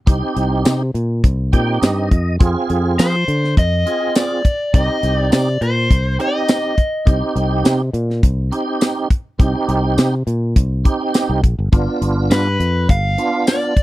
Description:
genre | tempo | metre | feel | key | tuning
straight-eighth soul blues | 103 BPM | 4/4 | straight | C minor | A4 = 440 Hz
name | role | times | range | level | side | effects
tonewheel organ | accompaniment | 0.1-13.7 s | B3 to G5 | -20 LUFS | right 3 dB | overdrive, chorus vibrato, slow rotary speaker
fingered electric bass | bass | 0.1-13.2 s | G1 to F3 | -18 LUFS | equal | none
tight funk drum kit | drums | 0.1-13.8 s | hi-hat, kick drum, snare drum, tambourine | -14 LUFS | equal | none
overdriven semi-hollow guitar | melody | 3.0-8.5, 12.3-13.8 s | B4 to F5 | -20 LUFS | left 1 dB | none
room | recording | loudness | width
little or no reverb | dry, close 1970s-style studio recording | -14 LUFS | side -16 dB against mid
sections
0.0-13.8 A section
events
tonewheel organ fill 1.2-2.4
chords
0.0 Cm; 2.4 Fm; 4.7 Cm; 11.7 G7

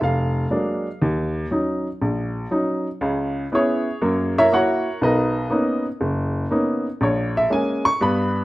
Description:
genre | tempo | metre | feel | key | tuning
solo jazz | 120 BPM | 4/4 | swing 68% on 8ths | unclear | A4 = 440 Hz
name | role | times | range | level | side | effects
warm upright piano | solo | 0.0-8.4 s | E#1 to C#6 | -19 LUFS | equal | none
room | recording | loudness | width
moderate large studio reverb, RT60 1.0 s | dark, warm production | -19 LUFS | side -18 dB against mid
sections
0.0-8.4 A section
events
upright piano solo 0.0-8.4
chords
0.0 A#7b13; 1.0 D#m7; 3.0 C#m7; 4.0 F#7; 5.0 Bmaj9; 7.0 A#m7b5

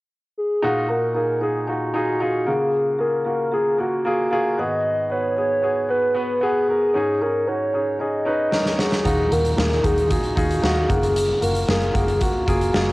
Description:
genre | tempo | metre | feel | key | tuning
piano-driven pop | 114 BPM | 4/4 | straight | Eb minor | A4 = 440 Hz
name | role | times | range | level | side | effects
hollow clarinet-like synth lead | melody | 0.4-12.9 s | Gb4 to Eb5 | -22 LUFS | equal | chorus
warm grand piano | accompaniment | 0.6-12.9 s | Ab2 to Cb5 | -23 LUFS | equal | none
huge arena drum kit | drums | 8.5-12.9 s | hi-hat, kick drum, snare drum | -23 LUFS | equal | cassette tape
vintage muted fingered electric bass | bass | 9.1-12.9 s | Gb1 to Eb2 | -24 LUFS | equal | none
room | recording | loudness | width
light reverb | home recording on cassette | -18 LUFS | side -20 dB against mid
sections
0.6-12.9 A section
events
drum fill 8.5-9.1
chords
0.0 N.C.; 0.6 Ebmadd9; 2.5 Gbmaj7; 4.6 Abm7; 7.0 Dbsus2; 9.1 Ebmadd9; 10.9 Gbmaj7

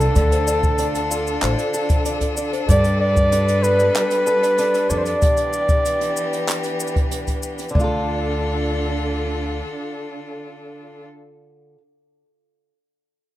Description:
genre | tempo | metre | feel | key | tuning
folktronica | 95 BPM | 4/4 | straight | D dorian | A4 = 439 Hz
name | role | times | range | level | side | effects
breathy flugelhorn | melody | 0.0-7.1 s | A4 to D5 | -21 LUFS | equal | ping-pong delay, plate reverb
small celesta | second line | 0.0-12.8 s | B4 to D5 | -29 LUFS | left 1 dB | none
rich string quartet | sustained chords | 0.0-11.0 s | D3 to B4 | -25 LUFS | left 1 dB | plate reverb
fingerpicked swing-style acoustic guitar | arpeggios | 0.0-11.8 s | D3 to A4 | -27 LUFS | equal | ping-pong delay, plate reverb
upright bass | bass | 0.0-9.6 s | A1 to G2 | -22 LUFS | equal | none
jazz brush drum kit | drums | 0.0-7.9 s | cabasa, handclaps, hi-hat | -28 LUFS | equal | none
kick drum | drums | 0.2-7.9 s | none | -20 LUFS | equal | none
room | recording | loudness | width
wet studio reverb, RT60 0.5 s | rough home demo mix | -17 LUFS | side -14 dB against mid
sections
0.0-7.7 A section; 7.7-10.3 B section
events
none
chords
0.0 Dm; 2.7 Gadd9; 5.2 Em7; 7.7 Dm

